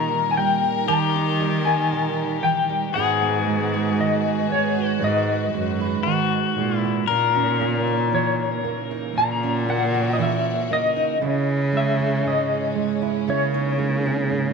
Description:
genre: acoustic folk-pop ballad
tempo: 58 BPM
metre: 4/4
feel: straight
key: G# minor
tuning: A4 = 444 Hz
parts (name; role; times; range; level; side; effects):
- electric guitar through a small old amp; melody; 0.0-14.5 s; C#5 to A#5; -24 LUFS; left 4 dB; tremolo
- pedal steel guitar; second line; 0.0-11.2 s; F#4 to A#4; -26 LUFS; left 14 dB; none
- fingerpicked steel-string acoustic guitar; accompaniment; 0.0-14.5 s; G#2 to C#5; -25 LUFS; right 14 dB; none
- warm chamber string section; sustained chords; 0.0-14.5 s; C#3 to B4; -32 LUFS; left 1 dB; none
- rich cello; bass; 0.0-14.5 s; F#2 to D#3; -25 LUFS; equal; none
room: moderate echo chamber reverb, RT60 2.5 s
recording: 1960s-style stereo with parts hard left and right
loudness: -19 LUFS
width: side -5 dB against mid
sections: 0.0-14.5 A section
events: none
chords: 0.0 D#; 2.9 G#m7; 7.1 A#dim; 11.2 C#madd9

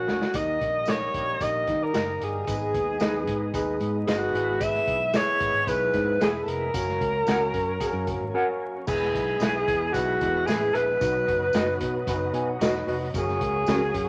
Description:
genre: uptempo 1960s-style soul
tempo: 112 BPM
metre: 4/4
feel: straight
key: unclear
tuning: A4 = 440 Hz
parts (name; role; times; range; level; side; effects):
- warm alto saxophone; melody; 0.0-14.1 s; F#4 to E5; -28 LUFS; equal; none
- bright tine electric piano; accompaniment; 0.0-14.1 s; C#4 to G#5; -33 LUFS; equal; none
- overdriven tonewheel organ; sustained chords; 0.0-14.1 s; F#3 to E4; -39 LUFS; equal; slow rotary speaker, chorus vibrato
- fingered electric bass; bass; 0.0-14.1 s; E1 to D#3; -35 LUFS; equal; none
- vintage drum kit; drums; 0.1-14.1 s; crash cymbal, hi-hat, kick drum, snare drum; -33 LUFS; equal; none
- tambourine; percussion; 0.3-13.8 s; none; -50 LUFS; equal; none
- mellow electric guitar; stabs; 0.9-13.8 s; C#4 to F#5; -33 LUFS; equal; tremolo
room: moderate studio reverb, RT60 0.9 s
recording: vinyl crackle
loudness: -25 LUFS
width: mono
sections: 0.3-8.9 A section; 8.9-14.1 B section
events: drum fill 0.0-0.3; tine electric piano fill 12.1-13.1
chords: 0.3 D#; 2.5 G#m; 4.3 E/G#; 6.7 F#; 8.9 E; 11.0 B; 13.1 F#

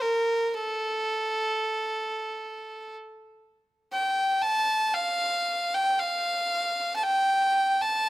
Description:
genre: arabic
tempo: free time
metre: none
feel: none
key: unclear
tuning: A4 = 438 Hz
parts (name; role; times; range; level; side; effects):
- rich violin; solo; 0.0-8.1 s; A4 to A5; -24 LUFS; equal; none
room: light reverb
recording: close, detailed microphones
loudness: -24 LUFS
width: side -17 dB against mid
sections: 0.0-8.1 A section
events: none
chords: none

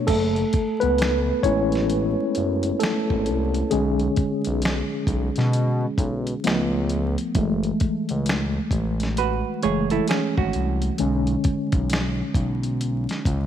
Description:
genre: R&B, neo-soul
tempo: 66 BPM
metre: 4/4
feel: swing 62% on 16ths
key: unclear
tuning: A4 = 440 Hz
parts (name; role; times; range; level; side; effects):
- tine electric piano; accompaniment; 0.0-13.5 s; D3 to C#5; -23 LUFS; left 1 dB; overdrive, medium stereo tremolo
- smooth synth bass; bass; 0.1-13.5 s; F#1 to B2; -25 LUFS; equal; none
- dusty soul sampler-style drum kit; drums; 0.1-13.5 s; crash cymbal, finger snaps, hi-hat, kick drum, snare drum; -26 LUFS; equal; none
- hollow-body jazz guitar; second line; 9.2-11.0 s; C#4 to C#5; -25 LUFS; right 9 dB; none
room: light reverb, digital ambience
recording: 1960s-style stereo, vinyl crackle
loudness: -20 LUFS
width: side -9 dB against mid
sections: 0.1-13.5 A section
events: tine electric piano solo 0.1-13.5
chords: 0.1 F#m9; 3.7 Bm69; 6.4 C#aug7; 7.4 F#m9; 11.0 Bm69

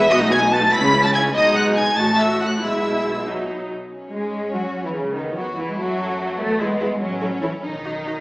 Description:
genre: quick classical-period movement for string orchestra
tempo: 96 BPM (dotted quarters)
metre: 6/8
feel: rubato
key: E major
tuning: A4 = 439 Hz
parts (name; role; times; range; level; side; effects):
- rich studio violin section; second line; 0.0-8.2 s; A3 to B5; -22 LUFS; equal; none
- rich studio viola section; accompaniment; 0.0-8.1 s; C#3 to B4; -23 LUFS; equal; none
- rich chamber double bass section; bass; 0.0-8.2 s; E1 to G#2; -32 LUFS; equal; none
- warm chamber cello section; bass; 0.0-8.2 s; E2 to A3; -26 LUFS; equal; none
- rich chamber violin section; melody; 0.1-8.1 s; G#3 to B6; -24 LUFS; equal; none
room: wet recital hall reverb, RT60 1.6 s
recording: recorded in a church or concert hall, small speaker sound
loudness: -18 LUFS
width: side -22 dB against mid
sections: 0.0-3.9 A section; 3.9-8.2 B section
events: none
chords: 0.1 B7; 0.7 C#m; 1.3 G#m/B; 2.0 F#m/A; 2.6 E/B; 3.3 B; 3.9 E; 5.2 B7/D#; 6.4 E; 7.0 A; 7.6 B

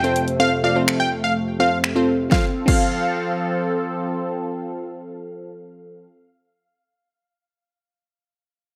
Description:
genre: dance-pop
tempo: 125 BPM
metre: 4/4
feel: straight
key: F major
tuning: A4 = 440 Hz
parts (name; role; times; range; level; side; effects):
- plucky unison lead; melody; 0.0-3.7 s; F5 to G5; -25 LUFS; equal; tape echo
- glassy wavetable pluck; accompaniment; 0.0-6.5 s; C4 to D5; -25 LUFS; equal; chorus, sidechain pumping
- filtered supersaw swell; sustained chords; 0.0-6.1 s; F2 to A4; -28 LUFS; equal; phaser, sidechain pumping
- deep house drum kit; drums; 0.0-2.8 s; crash cymbal, finger snaps, hi-hat, kick drum, snare drum; -23 LUFS; equal; overdrive
room: moderate plate reverb, RT60 1.2 s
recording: none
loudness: -21 LUFS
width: mono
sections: 0.0-2.3 A section; 2.3-6.2 B section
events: kick muted 0.4-2.3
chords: 0.0 F

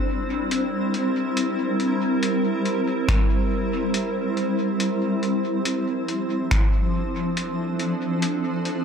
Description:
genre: ambient dub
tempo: 70 BPM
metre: 4/4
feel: swing 55% on 16ths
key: C mixolydian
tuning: A4 = 439 Hz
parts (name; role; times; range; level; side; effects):
- granular cloud pad; sustained chords; 0.0-8.8 s; F3 to C5; -22 LUFS; equal; built-in reverb
- lo-fi sampler-style drum kit; drums; 0.5-8.8 s; finger snaps, hi-hat; -30 LUFS; left 1 dB; dub echo
- electronic kick drum; drums; 3.1-6.7 s; none; -23 LUFS; equal; none
room: little or no reverb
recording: echo-heavy mix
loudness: -21 LUFS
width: side -7 dB against mid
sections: 0.0-8.8 A section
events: none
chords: 0.0 C7; 4.8 Dm7

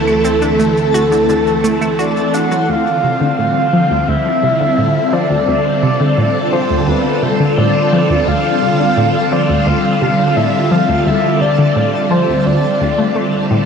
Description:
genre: ambient, sequencer-driven space music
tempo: 86 BPM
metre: 4/4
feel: straight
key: D minor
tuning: A4 = 438 Hz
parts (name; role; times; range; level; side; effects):
- breathy flute-like synth lead; melody; 0.0-13.5 s; A4 to F#5; -16 LUFS; equal; wide subtle chorus, cassette tape, ping-pong delay
- phased string machine; sustained chords; 0.0-13.7 s; D3 to A4; -16 LUFS; equal; ensemble chorus, phaser
- fat analog bass; bass; 0.0-2.7 s; D2; -24 LUFS; equal; tube saturation
- twinkling granular texture; texture; 0.0-13.7 s; A4 to A5; -30 LUFS; equal; built-in reverb
- cabasa and claves; percussion; 0.1-2.7 s; none; -31 LUFS; right 3 dB; ping-pong delay
- analog pluck; riff; 0.2-13.6 s; D2 to F#4; -18 LUFS; equal; chorus, ping-pong delay
room: wet huge ambient reverb, RT60 7.6 s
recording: worn, warbling old tape, cassette tape, warbly pitch drift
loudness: -12 LUFS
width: side -6 dB against mid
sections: 0.0-2.7 A section; 2.7-13.7 B section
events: none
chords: 0.0 D; 2.7 Dm

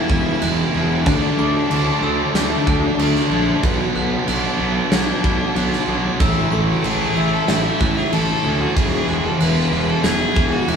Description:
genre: post-rock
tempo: 94 BPM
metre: 4/4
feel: straight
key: A major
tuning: A4 = 437 Hz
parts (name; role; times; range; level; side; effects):
- clear violin; melody; 0.0-10.8 s; A3 to B4; -26 LUFS; left 1 dB; none
- warbly tape-like pad; sustained chords; 0.3-10.8 s; A3 to C#6; -35 LUFS; equal; none
- glockenspiel with brass mallets; arpeggios; 0.0-10.8 s; C#6 to G#6; -30 LUFS; left 2 dB; none
- overdriven semi-hollow guitar; riff; 0.0-10.8 s; E2 to D4; -23 LUFS; left 5 dB; none
- tight distorted guitar; riff; 0.0-10.8 s; E2 to D4; -24 LUFS; right 6 dB; distortion
- fuzz fingered electric bass; bass; 0.1-10.8 s; E1 to D2; -22 LUFS; right 1 dB; overdrive
- huge arena drum kit; drums; 0.1-10.8 s; crash cymbal, kick drum, snare drum; -21 LUFS; right 1 dB; none
room: moderate studio reverb, RT60 0.8 s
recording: band playing live in one room, studio reverb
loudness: -16 LUFS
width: side -6 dB against mid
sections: 0.0-10.8 A section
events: none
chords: 0.0 Eadd9; 1.1 Dadd9; 3.6 Bm; 6.2 A; 8.8 Eadd9

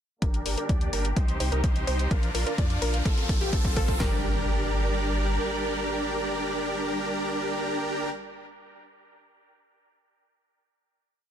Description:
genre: EDM, festival progressive house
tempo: 127 BPM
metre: 4/4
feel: straight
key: G minor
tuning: A4 = 440 Hz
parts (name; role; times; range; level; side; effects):
- clear studio string section; sustained chords; 0.2-8.1 s; C3 to D5; -35 LUFS; right 1 dB; sidechain pumping, low-pass filter
- wide unison pluck; arpeggios; 0.2-8.1 s; G4 to D5; -36 LUFS; equal; sidechain pumping, dub echo
- big supersaw lead; riff; 0.2-8.1 s; C4 to D5; -30 LUFS; equal; sidechain pumping, low-pass filter, dub echo
- saturated sub bass; bass; 0.2-5.4 s; G1 to F2; -29 LUFS; equal; sidechain pumping
- big-room dance drum kit; drums; 0.2-4.1 s; handclaps, kick drum, snare drum; -25 LUFS; equal; none
- electronic hi-hat; drums; 0.2-4.0 s; none; -36 LUFS; left 3 dB; high-pass filter on hats
- riser and impact; sound effects; 1.1-8.1 s; none; -36 LUFS; equal; none
room: light reverb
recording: dense, heavily limited modern master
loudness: -24 LUFS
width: side -9 dB against mid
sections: 0.2-4.0 build; 4.0-7.8 final chord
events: build-up 0.2-4.0; filter sweep on supersaw synth 0.2-4.0; filter sweep on synth pluck 0.2-4.0; filter sweep on string section 0.2-4.0; riser 1.1-4.0; drum fill 2.1-4.0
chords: 0.2 Gm; 1.2 Cm; 2.1 Bb; 3.1 F/A; 4.0 Gm

